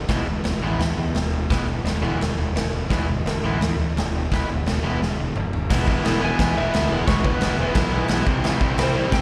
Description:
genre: garage rock duo or trio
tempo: 172 BPM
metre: 4/4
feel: straight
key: unclear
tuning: A4 = 439 Hz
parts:
  - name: fuzz fingered electric bass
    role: bass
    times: 0.0-9.2 s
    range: E1 to C3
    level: -27 LUFS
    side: equal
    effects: overdrive
  - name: crunchy overdriven guitar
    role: riff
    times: 0.1-9.2 s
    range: C3 to E4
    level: -27 LUFS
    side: equal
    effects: slapback echo
  - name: raw garage drum kit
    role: drums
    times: 0.1-9.2 s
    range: crash cymbal, kick drum, snare drum, toms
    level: -25 LUFS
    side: equal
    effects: none
  - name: electric slide guitar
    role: melody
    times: 6.2-9.2 s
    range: B4 to G#5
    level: -29 LUFS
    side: equal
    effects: slapback echo
room: little or no reverb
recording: live gig heard through the venue's PA, recital hall reverb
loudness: -22 LUFS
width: mono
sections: 0.0-5.7 A section; 5.7-9.2 B section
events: drum fill 5.0-5.7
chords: 0.0 E; 8.3 C

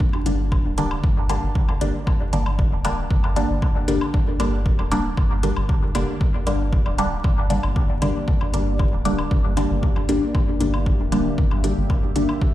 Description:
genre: dub techno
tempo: 116 BPM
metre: 4/4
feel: straight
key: G dorian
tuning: A4 = 441 Hz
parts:
  - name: electronic kick drum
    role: drums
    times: 0.0-12.5 s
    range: none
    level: -21 LUFS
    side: equal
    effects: none
  - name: woodblock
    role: percussion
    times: 0.1-12.4 s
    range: none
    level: -36 LUFS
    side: left 2 dB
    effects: overdrive, sidechain pumping on perc, dub echo
  - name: filtered dub chord stab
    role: stabs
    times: 0.3-12.3 s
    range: D3 to D4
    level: -24 LUFS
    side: equal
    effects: phaser, cassette tape, sidechain pumping, dub echo
  - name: soft dub sub bass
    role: bass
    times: 0.3-12.3 s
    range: D1 to G1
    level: -25 LUFS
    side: equal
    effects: sidechain pumping
  - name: electronic hi-hat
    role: drums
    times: 0.3-12.3 s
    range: none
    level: -36 LUFS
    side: left 1 dB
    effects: overdrive
  - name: deep dark ambient pad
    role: sustained chords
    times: 7.6-12.5 s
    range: Bb3 to E5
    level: -31 LUFS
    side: equal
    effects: chorus, built-in reverb, sidechain pumping
room: light reverb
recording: played on a big sound system in a bare room, large studio reverb, vinyl crackle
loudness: -18 LUFS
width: side -14 dB against mid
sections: 0.0-12.5 A section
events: none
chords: 0.0 Gm

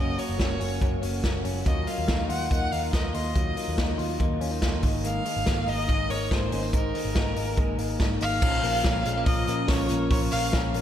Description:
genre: jangly indie pop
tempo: 142 BPM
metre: 4/4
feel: straight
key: Bb minor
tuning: A4 = 440 Hz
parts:
  - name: rich violin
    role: melody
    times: 0.0-10.7 s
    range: Bb4 to Gb5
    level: -31 LUFS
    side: equal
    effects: slapback echo, tape echo
  - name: electric guitar through a small old amp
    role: accompaniment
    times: 0.0-10.8 s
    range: Gb2 to Bb4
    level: -34 LUFS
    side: right 4 dB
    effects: spring reverb, slapback echo
  - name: direct-recorded clean electric guitar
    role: arpeggios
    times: 0.0-10.8 s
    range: Eb3 to F4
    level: -32 LUFS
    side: left 6 dB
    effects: slapback echo
  - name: vintage muted picked electric bass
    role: bass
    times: 0.0-10.8 s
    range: Gb1 to Bb2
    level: -31 LUFS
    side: equal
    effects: none
  - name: vintage drum kit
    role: drums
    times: 0.2-10.8 s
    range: crash cymbal, hi-hat, kick drum, snare drum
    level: -27 LUFS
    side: equal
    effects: none
  - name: glockenspiel with soft plastic mallets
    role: second line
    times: 8.2-10.7 s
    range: Db6 to F6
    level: -36 LUFS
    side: left 1 dB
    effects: slapback echo
  - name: hollow soft pad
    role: sustained chords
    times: 9.1-10.8 s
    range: F3 to Bb4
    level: -35 LUFS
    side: equal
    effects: chorus
room: moderate lush hall reverb, RT60 1.7 s, studio reverb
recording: big arena sound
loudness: -23 LUFS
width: side -10 dB against mid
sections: 0.0-8.4 A section; 8.4-10.8 B section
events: none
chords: 0.0 Gb; 1.7 Ebmadd9; 4.8 Absus2; 8.4 Bbm

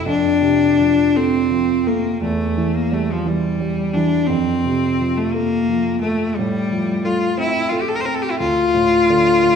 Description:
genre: classical, romantic duo for cello and grand piano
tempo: 58 BPM (dotted quarters)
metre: 6/8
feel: rubato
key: F major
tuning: A4 = 439 Hz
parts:
  - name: rich cello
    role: melody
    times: 0.0-9.6 s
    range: F3 to C5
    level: -17 LUFS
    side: left 2 dB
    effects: none
  - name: warm concert grand piano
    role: accompaniment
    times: 0.0-9.6 s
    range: D2 to C4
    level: -21 LUFS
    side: right 2 dB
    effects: none
room: wet scoring stage reverb, RT60 1.5 s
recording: minimal, uncompressed stereo recording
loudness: -16 LUFS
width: side -6 dB against mid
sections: 0.1-9.6 A section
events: none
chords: 0.1 F; 2.2 Emadd11; 4.3 F; 6.4 F/A; 8.4 Dm

